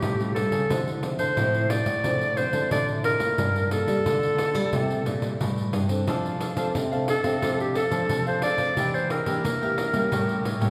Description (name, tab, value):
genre	samba and choro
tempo	89 BPM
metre	4/4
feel	straight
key	unclear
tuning	A4 = 440 Hz
part	breathy clarinet	melody	0.0-10.7 s	G4 to D5	-28 LUFS	equal	none
part	nylon-string guitar	accompaniment	0.0-10.7 s	G2 to A4	-32 LUFS	equal	none
part	nylon-string guitar	bass	0.0-10.7 s	G2 to Bb3	-32 LUFS	equal	none
part	pandeiro	percussion	0.0-10.7 s	none	-33 LUFS	equal	none
part	cavaquinho	accompaniment	6.1-10.7 s	D4 to G5	-37 LUFS	equal	none
room	wet recital hall reverb, RT60 1.6 s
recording	recorded in a church or concert hall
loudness	-25 LUFS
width	mono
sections	0.0-10.7 A section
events	none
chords	0.0 A7b13; 0.7 Dm9; 3.4 Gm9; 4.7 C7; 6.1 F6; 8.8 Em7b5; 10.1 A7b9